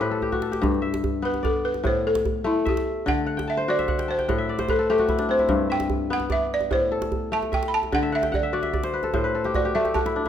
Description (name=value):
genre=west african traditional, West African string and xylophone music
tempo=99 BPM (dotted quarters)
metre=12/8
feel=straight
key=G major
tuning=A4 = 440 Hz
part: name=balafon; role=melody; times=0.0-10.1 s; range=E4 to B5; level=-25 LUFS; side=equal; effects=none
part: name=kora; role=arpeggios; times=0.0-10.3 s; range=G2 to A5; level=-24 LUFS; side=left 3 dB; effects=none
part: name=djembe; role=percussion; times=0.2-10.3 s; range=none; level=-29 LUFS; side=right 3 dB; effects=none
room=moderate recital hall reverb, RT60 1.4 s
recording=minimal, uncompressed stereo recording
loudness=-21 LUFS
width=side -9 dB against mid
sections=0.6-10.3 A section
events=kora fill 0.0-0.6, 3.3-5.5, 8.0-10.3; drum fill 0.2-0.6; balafon solo 0.6-10.3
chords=0.0 N.C.; 0.6 G; 1.8 A5; 3.1 D; 4.3 N.C.; 5.5 G; 6.7 Am; 7.9 D; 9.1 N.C.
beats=0.01 | 0.62 1.23 1.84 2.45 | 3.06 3.67 4.28 4.88 | 5.49 6.10 6.71 7.32 | 7.92 8.53 9.14 9.75